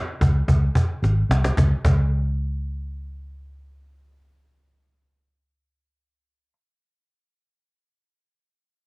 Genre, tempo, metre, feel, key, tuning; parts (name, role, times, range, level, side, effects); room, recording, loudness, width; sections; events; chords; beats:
polished 1980s jazz-funk pop; free time; A4 = 440 Hz
vintage muted fingered electric bass; bass; 0.2-6.5 s; G#1 to C#2; -21 LUFS; equal
cajon; drums; 0.2-2.0 s; -22 LUFS; equal; cassette tape
light reverb; home recording on cassette; -18 LUFS; side -29 dB against mid
0.0-1.6 A section; 1.6-5.9 B section
drum fill 1.0-1.6
free time